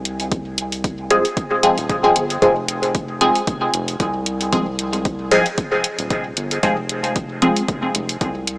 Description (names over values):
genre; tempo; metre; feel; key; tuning
dub techno; 114 BPM; 4/4; swing 55% on 16ths; F minor; A4 = 440 Hz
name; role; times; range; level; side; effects
round analog bass; bass; 0.0-8.6 s; Eb1 to C2; -27 LUFS; equal; sidechain pumping
electronic hi-hat; drums; 0.1-8.6 s; none; -23 LUFS; equal; none
electronic kick drum; drums; 0.3-8.3 s; none; -25 LUFS; equal; overdrive
filtered dub chord stab; stabs; 1.1-7.6 s; F3 to Ab4; -18 LUFS; equal; phaser, dub echo
room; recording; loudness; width
moderate huge ambient reverb, RT60 6.0 s; small speaker sound; -17 LUFS; side -21 dB against mid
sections
0.0-8.6 A section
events
none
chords
0.0 Fm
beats
| 0.32 0.84 1.37 1.90 | 2.42 2.95 3.47 4.00 | 4.53 5.05 5.58 6.11 | 6.63 7.16 7.68 8.21